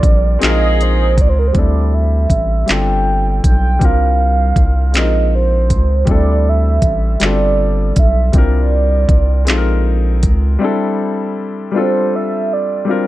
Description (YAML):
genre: slow six-eight R&B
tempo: 53 BPM (dotted quarters)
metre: 6/8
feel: straight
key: unclear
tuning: A4 = 441 Hz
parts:
  - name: mellow horn-like synth lead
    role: melody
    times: 0.0-13.1 s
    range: Bb4 to G5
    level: -19 LUFS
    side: right 4 dB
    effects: chorus
  - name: warm grand piano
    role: accompaniment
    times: 0.0-13.1 s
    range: G3 to Bb4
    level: -19 LUFS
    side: left 3 dB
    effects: none
  - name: warm horn section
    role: stabs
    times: 0.0-1.2 s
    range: Eb4 to Ab4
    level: -24 LUFS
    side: left 1 dB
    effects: tape echo
  - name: round analog bass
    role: bass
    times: 0.0-10.6 s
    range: G1 to D2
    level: -14 LUFS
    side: equal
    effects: none
  - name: smooth R&B drum kit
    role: drums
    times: 0.0-10.4 s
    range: handclaps, hi-hat, kick drum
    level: -14 LUFS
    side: equal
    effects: none
room: little or no reverb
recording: dark, warm production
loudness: -12 LUFS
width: side -16 dB against mid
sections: 0.0-1.5 A section; 1.5-10.6 B section; 10.6-13.1 A section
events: none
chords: 0.4 Bb9sus4; 1.5 D9sus4; 2.7 G9sus4; 3.8 C9sus4; 4.9 Bb9sus4; 6.1 D9sus4; 7.2 G9sus4; 8.3 C9sus4; 9.5 Bb9sus4; 10.6 D9sus4; 11.7 G9sus4